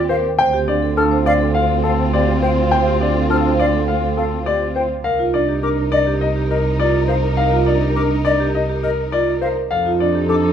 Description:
classical, minimalist pattern music; 103 BPM; 4/4; straight; A4 = 440 Hz
warm symphonic violin section; sustained chords; 0.0-10.5 s; C4 to Bb4; -24 LUFS; left 2 dB
rich double bass; bass; 0.0-10.5 s; C2 to F2; -20 LUFS; right 2 dB
clear grand piano; melody; 0.1-10.5 s; A4 to G5; -20 LUFS; left 6 dB
bright silver concert flute; arpeggios; 0.1-10.4 s; Eb5 to F6; -24 LUFS; left 1 dB
vibraphone with medium hard mallets; arpeggios; 0.1-10.5 s; D4 to C5; -21 LUFS; right 6 dB
light reverb; -15 LUFS; side -8 dB against mid
0.0-10.5 A section
0.4 Dm7; 5.0 Cm9; 9.7 F9
| 0.39 0.97 1.55 2.14 | 2.72 3.30 3.88 4.47 | 5.05 5.63 6.21 6.80 | 7.38 7.96 8.54 9.13 | 9.71 10.29

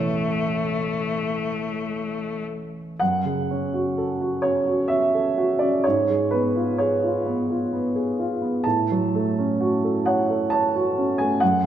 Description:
classical, romantic duo for cello and grand piano; 64 BPM; 3/4; uneven beats, rubato; A major, F# minor from 3.0 s; A4 = 440 Hz
rich cello; melody; 0.0-2.4 s; A3; -26 LUFS; left 5 dB
warm baby grand piano; accompaniment; 0.0-11.7 s; A1 to A5; -21 LUFS; right 1 dB
wet recital hall reverb, RT60 1.9 s; -20 LUFS; side -10 dB against mid
0.0-3.0 A section; 3.0-11.7 B section
0.0 A; 3.0 F#m; 5.8 C#7/G#; 8.6 F#m/A
0.83 1.93 | 3.00 3.97 4.91 | 5.85 6.79 7.72 | 8.65 9.58 10.51 | 11.41

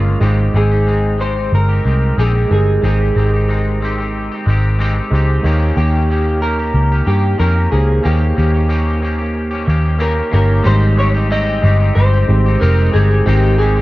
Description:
indie pop, bedroom pop; 92 BPM; 4/4; swing 55% on 16ths; Ab major; A4 = 439 Hz
clean electric guitar; accompaniment; 0.0-13.8 s; Db3 to G4; -23 LUFS; left 2 dB; analog chorus, vibrato effect, dub echo
overdriven tine electric piano; accompaniment; 0.0-13.8 s; G3 to G5; -21 LUFS; right 2 dB; cassette tape, dub echo
vintage muted picked electric bass; bass; 0.0-13.8 s; F1 to G2; -14 LUFS; equal
electric guitar through a small old amp; melody; 0.6-13.8 s; G4 to Eb5; -20 LUFS; equal; lush chorus, dub echo
light reverb; echo-heavy mix, cassette tape; -12 LUFS; side -18 dB against mid
0.0-10.7 A section; 10.7-13.8 B section
0.2 Abmaj7; 5.4 Eb7; 10.7 Abmaj7
| 0.22 0.88 1.53 2.18 | 2.83 3.49 4.14 4.79 | 5.44 6.10 6.75 7.40 | 8.05 8.71 9.36 10.01 | 10.66 11.31 11.97 12.62 | 13.27

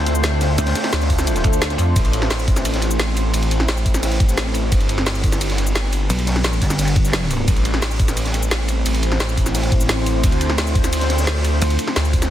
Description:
dark technical drum and bass; 174 BPM; 4/4; straight; A minor; A4 = 440 Hz
deep dark ambient pad; sustained chords; 0.0-12.3 s; G3 to C5; -25 LUFS; equal; chorus, built-in reverb, sidechain pumping
phased detuned saw bass; bass; 0.0-12.3 s; G1 to D2; -20 LUFS; equal; phaser, overdrive
crunchy breakbeat drum kit; drums; 0.1-12.3 s; hi-hat, ride cymbal, snare drum; -29 LUFS; equal; high-pass filter on cymbals, high-pass filter on hats, high-pass filter on snare, high-pass filter on room
drum and bass drum kit; drums; 0.1-12.3 s; cabasa, hi-hat, ride cymbal, snare drum; -23 LUFS; equal; overdrive
pulsing pluck wobble bass; bass; 0.6-1.9, 6.1-7.5, 11.6-11.8 s; G1 to F2; -19 LUFS; equal; chorus
electronic kick drum; drums; 1.1-12.2 s; -18 LUFS; equal
swell; sound effects; 1.4-2.0 s; -28 LUFS; left 3 dB
digital ambience; dense, heavily limited modern master; -16 LUFS; side -12 dB against mid
0.0-12.3 A section
swell 1.4-2.0
0.0 Dm7; 2.0 Am; 4.7 G; 7.5 Am; 10.2 Dm7
0.24 | 0.58 0.93 1.27 1.62 | 1.96 2.31 2.65 3.00 | 3.34 3.69 4.03 4.38 | 4.72 5.07 5.41 5.75 | 6.10 6.44 6.79 7.13 | 7.48 7.82 8.17 8.51 | 8.86 9.20 9.55 9.89 | 10.24 10.58 10.93 11.27 | 11.62 11.96

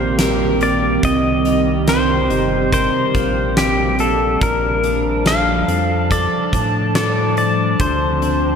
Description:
dream pop; 71 BPM; 4/4; straight; C dorian; A4 = 439 Hz
pedal steel guitar; melody; 0.0-8.6 s; G4 to F5; -19 LUFS; left 2 dB; tape echo
warbly tape-like pad; sustained chords; 0.0-8.6 s; Eb3 to A5; -20 LUFS; right 2 dB; chorus, built-in reverb
clean electric guitar; arpeggios; 0.0-8.6 s; C3 to Bb4; -23 LUFS; left 2 dB; wide subtle chorus, tape echo
round analog bass; bass; 0.0-8.6 s; G1 to A2; -22 LUFS; right 1 dB
huge arena drum kit; drums; 0.2-8.4 s; hi-hat, kick drum, snare drum; -23 LUFS; equal
moderate lush hall reverb, RT60 3.1 s; -14 LUFS; side -6 dB against mid
0.0-8.6 A section
0.0 Cm7; 4.4 Bbmaj7; 7.8 Dm7
0.19 | 1.03 1.88 2.72 3.57 | 4.41 5.26 6.10 6.95 | 7.79

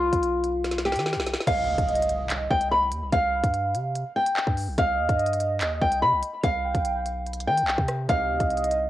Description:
hip hop, drill; 145 BPM; 4/4; half-time; C harmonic minor; A4 = 442 Hz
flamenco guitar; melody; 0.0-8.9 s; F4 to B5; -24 LUFS; left 1 dB; low-pass filter
long sustained 808-style bass; bass; 0.0-8.9 s; B1 to Eb3; -31 LUFS; equal
drill drum kit; drums; 0.1-8.8 s; crash cymbal, handclaps, hi-hat, kick drum, rim click, snare drum; -28 LUFS; equal
warm velvety synth lead; second line; 1.5-8.9 s; Eb5 to G5; -30 LUFS; right 2 dB; chorus, tape echo
impact; sound effects; 1.6-3.1 s; -39 LUFS; equal
warbly lo-fi synth keys; accompaniment; 8.1-8.9 s; C3 to G4; -36 LUFS; left 1 dB; chorus, low-pass filter
light reverb, digital ambience; home recording on cassette; -22 LUFS; side -14 dB against mid
0.0-1.5 A section; 1.5-8.9 B section
drum fill 0.6-1.5; impact 1.5-3.1
0.0 Cm (rootless); 1.5 Cm
0.23 0.64 1.06 | 1.47 1.88 2.30 2.71 | 3.13 3.54 3.95 4.37 | 4.78 5.20 5.61 6.02 | 6.44 6.85 7.26 7.68 | 8.09 8.51

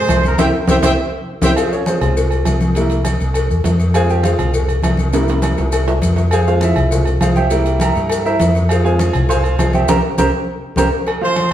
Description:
latin, salsa; 202 BPM; 4/4; straight; F harmonic minor; A4 = 440 Hz
clear trumpet section; melody; 0.0-1.5, 11.2-11.5 s; Bb4 to C6; -19 LUFS; right 1 dB
clear grand piano; accompaniment; 0.0-11.5 s; F3 to C6; -19 LUFS; right 2 dB
fingered electric bass; bass; 0.0-10.9 s; C2 to G2; -17 LUFS; equal
congas; percussion; 0.1-11.5 s; -22 LUFS; left 2 dB
cowbell; percussion; 0.1-11.5 s; -24 LUFS; left 4 dB
maracas; percussion; 0.1-10.8 s; -32 LUFS; left 4 dB
timbales and agogo bells; percussion; 0.1-11.5 s; -23 LUFS; right 2 dB
wet large studio reverb, RT60 1.4 s; band playing live in one room; -13 LUFS; side -11 dB against mid
0.0-1.6 A section; 1.6-11.1 B section
drum fill 0.4-1.6, 5.1-6.3, 9.9-11.1; band accent 0.4-1.6, 9.9-11.1; grand piano solo 1.6-11.1
0.4 C; 1.6 Fm; 2.8 C7; 3.9 Fm; 5.1 C7; 6.3 Fm; 7.5 C7; 8.7 Fm; 9.9 C5
0.09 | 0.39 0.68 0.98 1.27 | 1.57 1.87 2.17 2.46 | 2.76 3.06 3.35 3.65 | 3.95 4.25 4.54 4.84 | 5.14 5.43 5.73 6.03 | 6.33 6.62 6.92 7.22 | 7.51 7.81 8.11 8.40 | 8.70 8.99 9.29 9.59 | 9.88 10.18 10.48 10.77 | 11.07 11.37

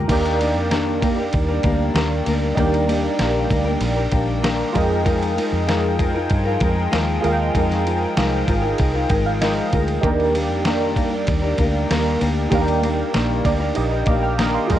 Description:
indie pop, bedroom pop; 97 BPM; 4/4; straight; Eb major; A4 = 440 Hz
nylon-string guitar; accompaniment; 0.0-14.8 s; Eb3 to Bb4; -22 LUFS; left 3 dB; wide subtle chorus, vibrato effect
warm analog keys; accompaniment; 0.0-14.8 s; Eb4 to F6; -25 LUFS; right 5 dB; chorus, cassette tape
phased analog pad; sustained chords; 0.0-14.8 s; F3 to G5; -26 LUFS; equal; phaser, chorus
vintage muted fingered electric bass; bass; 0.0-14.8 s; Ab1 to G2; -23 LUFS; equal; transformer saturation
dusty soul sampler-style drum kit; drums; 0.1-14.8 s; crash cymbal, kick drum, ride cymbal, snare drum; -24 LUFS; equal
moderate studio ambience, RT60 0.5 s; worn, warbling old tape, cassette tape, warbly pitch drift; -17 LUFS; side -12 dB against mid
0.1-14.8 A section
synth keys fill 8.8-10.0, 13.1-14.8
0.1 Ebmaj7; 4.8 Fm11; 10.0 Ebmaj7
| 0.10 0.72 1.34 1.96 | 2.58 3.20 3.82 4.44 | 5.06 5.68 6.30 6.93 | 7.55 8.17 8.79 9.41 | 10.03 10.66 11.28 11.90 | 12.52 13.14 13.77 14.39

